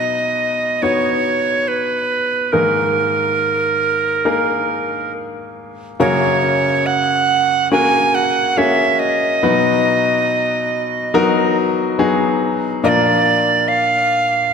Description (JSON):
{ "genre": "pop", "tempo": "70 BPM", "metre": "4/4", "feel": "straight", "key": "B major", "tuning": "A4 = 441 Hz", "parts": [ { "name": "breathy bright tenor recorder", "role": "melody", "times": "0.0-14.5 s", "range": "A#4 to G#5", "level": "-16 LUFS", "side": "right 3 dB", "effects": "ping-pong delay" }, { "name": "clear baby grand piano", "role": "accompaniment", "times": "0.0-14.5 s", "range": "F#2 to C#5", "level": "-18 LUFS", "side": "left 3 dB", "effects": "none" } ], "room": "wet scoring stage reverb, RT60 1.8 s", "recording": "none", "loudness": "-14 LUFS", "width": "side -6 dB against mid", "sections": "0.0-6.0 A section; 6.0-14.5 B section", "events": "none", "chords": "0.0 B; 2.5 G#sus2; 6.0 F#add9; 9.4 B; 12.8 A#", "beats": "0.82 1.68 | 2.53 3.39 4.25 5.13 | 6.00 6.86 7.72 8.58 | 9.43 10.29 11.14 11.99 | 12.84 13.68 14.53" }